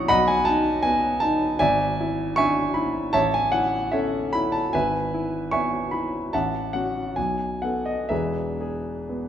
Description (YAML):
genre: classical, romantic character piece for solo piano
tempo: 61-80 BPM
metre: 4/4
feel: rubato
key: E major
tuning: A4 = 439 Hz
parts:
  - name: warm grand piano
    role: solo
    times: 0.0-9.3 s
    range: E1 to D#6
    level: -21 LUFS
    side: equal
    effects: none
room: wet recital hall reverb, RT60 1.6 s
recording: dark, warm production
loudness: -21 LUFS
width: side -10 dB against mid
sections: 0.0-9.3 A section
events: none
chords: 0.1 B; 1.6 E7/G#; 3.1 A; 4.7 E/G#; 6.3 F#m7/A; 7.2 B7; 8.1 E